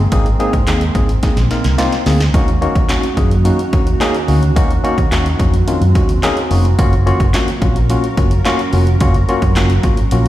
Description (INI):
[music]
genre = dance-pop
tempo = 108 BPM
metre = 4/4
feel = straight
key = unclear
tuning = A4 = 439 Hz
[part]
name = glassy FM pad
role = sustained chords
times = 0.0-10.3 s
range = Eb3 to Bb4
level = -23 LUFS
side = right 2 dB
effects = ensemble chorus, built-in reverb, sidechain pumping
[part]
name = vintage muted fingered electric bass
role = bass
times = 0.0-10.3 s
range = F1 to Eb3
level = -15 LUFS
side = equal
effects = sidechain pumping
[part]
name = bright tine electric piano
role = accompaniment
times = 0.1-10.3 s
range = Bb3 to Bb4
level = -18 LUFS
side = left 2 dB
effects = fast stereo tremolo, sidechain pumping
[part]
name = punchy analog drum machine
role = drums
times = 0.1-10.3 s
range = handclaps, hi-hat, kick drum, snare drum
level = -16 LUFS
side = equal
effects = none
[sound]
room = light reverb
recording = played on a big sound system in a bare room, stone room reverb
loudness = -12 LUFS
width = side -14 dB against mid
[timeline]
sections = 0.0-10.3 A section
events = drum fill 1.2-2.3; kick muted 10.1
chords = 0.0 Abadd9; 2.3 Ebm7; 6.8 Gbmaj7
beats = | 0.12 0.68 1.23 1.79 | 2.34 2.90 3.45 4.01 | 4.56 5.12 5.67 6.23 | 6.79 7.34 7.90 8.45 | 9.01 9.56 10.12